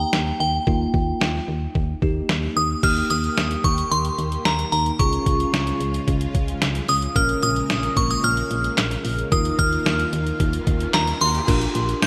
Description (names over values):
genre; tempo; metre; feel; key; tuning
synth-pop; 111 BPM; 4/4; straight; unclear; A4 = 439 Hz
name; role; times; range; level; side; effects
glassy synth bell; melody; 0.0-12.1 s; G5 to G6; -26 LUFS; equal; chorus, tremolo, delay
bell-like tine electric piano; accompaniment; 0.0-12.1 s; Bb3 to Bb4; -30 LUFS; equal; lush chorus
solid FM bass; bass; 0.0-12.1 s; Bb1 to Eb2; -28 LUFS; equal; none
detuned 8-bit digital drum machine; drums; 0.1-12.1 s; crash cymbal, handclaps, hi-hat, kick drum, snare drum; -26 LUFS; equal; gated reverb
string machine, full ensemble; sustained chords; 2.8-11.5 s; Db3 to G4; -34 LUFS; equal; ensemble chorus
riser; sound effects; 10.4-11.5 s; none; -36 LUFS; equal; none
room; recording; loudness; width
moderate lush hall reverb, RT60 2.0 s; bright 1980s-style digital production; -21 LUFS; mono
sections
0.0-2.8 A section; 2.8-11.5 B section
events
riser 10.4-11.5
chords
0.0 Ebadd9; 2.8 Eb; 5.0 Db; 7.2 Bbm7; 9.3 Ebsus2; 11.5 Bbadd9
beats
0.13 | 0.67 1.21 1.75 2.29 | 2.83 3.37 3.91 4.46 | 5.00 5.54 6.08 6.62 | 7.16 7.70 8.24 8.78 | 9.32 9.86 10.40 10.94 | 11.48 12.02